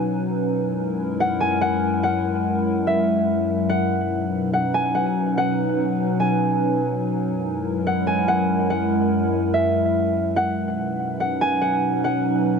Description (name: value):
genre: hip hop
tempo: 144 BPM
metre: 4/4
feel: half-time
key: B major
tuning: A4 = 441 Hz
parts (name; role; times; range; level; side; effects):
- concert harp; melody; 0.0-12.6 s; E5 to G#5; -24 LUFS; right 1 dB; tape echo
- warbly tape-like pad; sustained chords; 0.0-12.6 s; F#2 to B4; -21 LUFS; left 1 dB; chorus, built-in reverb
room: moderate huge ambient reverb, RT60 8.9 s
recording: dark, warm production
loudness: -19 LUFS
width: side -6 dB against mid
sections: 0.0-12.6 A section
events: none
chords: 0.0 Badd9; 0.6 F#7; 3.9 Badd9; 7.2 F#7; 10.6 Badd9